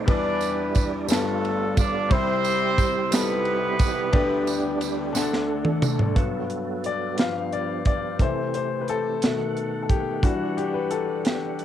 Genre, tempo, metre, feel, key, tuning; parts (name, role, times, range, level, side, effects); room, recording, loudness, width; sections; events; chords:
slow gospel; 59 BPM (dotted quarters); 6/8; straight; G major; A4 = 439 Hz
clear baby grand piano; accompaniment; 0.0-11.6 s; G1 to B5; -26 LUFS; left 6 dB; cassette tape
percussive tonewheel organ; sustained chords; 0.0-11.6 s; C3 to F#5; -30 LUFS; right 10 dB; fast rotary speaker, overdrive, chorus vibrato, cassette tape
mellow horn section; melody; 0.1-5.5 s; A3 to D5; -26 LUFS; right 2 dB; cassette tape
crisp fusion drum kit; drums; 0.1-11.6 s; hi-hat, kick drum, ride cymbal, snare drum, toms; -23 LUFS; right 1 dB; cassette tape
tambourine; percussion; 0.4-6.1 s; -34 LUFS; right 14 dB
light reverb; home recording on cassette; -21 LUFS; side -10 dB against mid
0.0-6.2 A section; 6.2-11.6 B section
drum fill 5.1-6.2; grand piano solo 6.2-11.6
0.1 Em7; 1.1 G9; 2.1 Cmaj7; 4.1 G/D; 5.1 D; 6.2 Gmaj9; 7.2 G7; 8.2 C6; 9.2 B7; 10.2 Em9